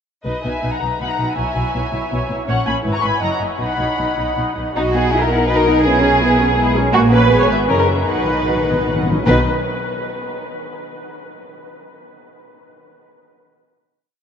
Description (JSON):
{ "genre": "quick classical-period movement for symphony orchestra", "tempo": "150-166 BPM", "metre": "3/4", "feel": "rubato", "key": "B major", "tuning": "A4 = 440 Hz", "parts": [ { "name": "muted studio violin section", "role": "melody", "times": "0.2-9.5 s", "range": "A#4 to C#6", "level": "-25 LUFS", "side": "left 4 dB", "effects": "none" }, { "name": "muted studio violin section", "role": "second line", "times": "0.2-9.5 s", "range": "D#4 to A#5", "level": "-19 LUFS", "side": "equal", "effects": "none" }, { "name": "muted studio cello section", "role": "bass", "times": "0.2-9.5 s", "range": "F#2 to F#4", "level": "-22 LUFS", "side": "right 1 dB", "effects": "none" }, { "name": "muted studio viola section", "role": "accompaniment", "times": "0.3-9.5 s", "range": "D#3 to D#5", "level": "-23 LUFS", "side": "right 2 dB", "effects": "none" }, { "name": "muted studio double bass section", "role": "bass", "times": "0.3-9.5 s", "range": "F#1 to B1", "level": "-22 LUFS", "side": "equal", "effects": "none" }, { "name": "timpani", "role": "percussion", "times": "8.1-9.4 s", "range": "B2", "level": "-24 LUFS", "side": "left 3 dB", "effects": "none" } ], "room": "wet huge ambient reverb, RT60 8.6 s", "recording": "in a vast, echoing space, nothing above 8.0 kHz", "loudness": "-15 LUFS", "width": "side -7 dB against mid", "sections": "0.3-4.8 A section; 4.8-9.3 A section; 9.3-10.4 final chord", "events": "timpani fill 8.1-9.3", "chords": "0.3 B; 1.4 C#m7/B; 2.5 F#; 2.9 E; 3.2 F#6; 3.6 B; 5.9 C#m7/B; 6.9 F#/A#; 7.3 E/G#; 7.7 F#13; 8.1 B", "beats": "| 0.26 0.63 1.01 | 1.38 1.75 2.12 | 2.49 2.85 3.22 | 3.60 3.99 4.37 | 4.76 5.12 5.49 | 5.85 6.22 6.58 | 6.94 7.31 7.68 | 8.07 8.47 8.87 | 9.26" }